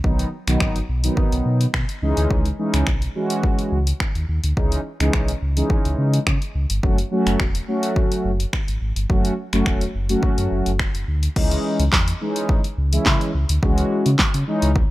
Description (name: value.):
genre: dance-pop.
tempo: 106 BPM.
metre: 4/4.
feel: straight.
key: C# minor.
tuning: A4 = 441 Hz.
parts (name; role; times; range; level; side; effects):
mellow synth brass; accompaniment; 0.0-14.7 s; D#3 to F#4; -23 LUFS; equal; chorus, sidechain pumping.
sub bass with octave; bass; 0.0-14.8 s; E1 to C#3; -21 LUFS; equal; sidechain pumping.
punchy analog drum machine; drums; 0.0-14.9 s; crash cymbal, finger snaps, handclaps, hi-hat, kick drum, snare drum; -21 LUFS; equal; none.
room: digital ambience.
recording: none.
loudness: -18 LUFS.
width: side -17 dB against mid.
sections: 0.0-11.4 A section; 11.4-14.9 B section.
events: none.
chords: 0.0 B; 2.0 C#madd9; 6.8 F#m; 11.4 C#madd9.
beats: | 0.04 0.61 1.17 1.74 | 2.31 2.87 3.44 4.00 | 4.57 5.14 5.70 6.27 | 6.83 7.40 7.97 8.53 | 9.10 9.66 10.23 10.80 | 11.36 11.93 12.49 13.06 | 13.63 14.19 14.76.